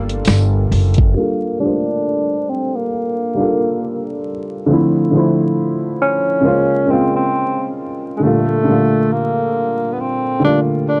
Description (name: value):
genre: lo-fi hip hop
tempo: 68 BPM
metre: 4/4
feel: swing 57% on 16ths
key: G dorian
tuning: A4 = 440 Hz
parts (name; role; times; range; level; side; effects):
- breathy tenor saxophone; melody; 0.0-11.0 s; Ab3 to D4; -21 LUFS; equal; low-pass filter, tape echo
- dark upright piano; accompaniment; 0.0-11.0 s; Bb2 to C5; -19 LUFS; equal; cassette tape, low-pass filter
- upright bass; bass; 0.0-1.1 s; F#1 to G1; -17 LUFS; equal; none
- dusty soul sampler-style drum kit; drums; 0.1-1.1 s; finger snaps, hi-hat, kick drum, snare drum; -17 LUFS; equal; vintage 12-bit sampler grit
- tambourine; percussion; 0.3-0.5 s; none; -34 LUFS; equal; none
room: moderate studio ambience, RT60 0.5 s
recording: dry, gritty hardware recording, vinyl crackle, nothing above 10.8 kHz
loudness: -17 LUFS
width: mono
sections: 0.0-1.2 A section; 1.2-11.0 B section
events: filter sweep 1.2-11.0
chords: 0.0 Gm9; 4.7 Dm9; 6.4 Bbm9; 8.2 Gm9